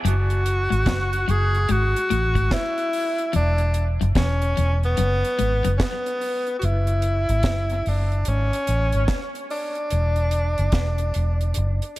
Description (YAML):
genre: dub reggae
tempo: 73 BPM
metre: 4/4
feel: swing 62% on 16ths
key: F# minor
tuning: A4 = 443 Hz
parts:
  - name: electric guitar at the edge of break-up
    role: riff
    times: 0.0-5.7 s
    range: E2 to A2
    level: -30 LUFS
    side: left 7 dB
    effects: dub echo
  - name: vintage muted fingered electric bass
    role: bass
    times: 0.0-11.8 s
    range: E1 to A1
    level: -21 LUFS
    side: equal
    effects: none
  - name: clear tenor saxophone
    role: melody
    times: 0.1-12.0 s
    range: B3 to G#4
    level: -24 LUFS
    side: equal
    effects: dub echo
  - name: deep reggae drum kit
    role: drums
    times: 0.1-12.0 s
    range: hi-hat, kick drum, snare drum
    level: -27 LUFS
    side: equal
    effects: none
room: light reverb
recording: echo-heavy mix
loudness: -20 LUFS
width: side -17 dB against mid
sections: 0.0-12.0 A section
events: kick muted 11.6-12.0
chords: 0.0 F#7(no3); 3.3 E5; 6.6 F#7(no3); 9.9 E7(no3)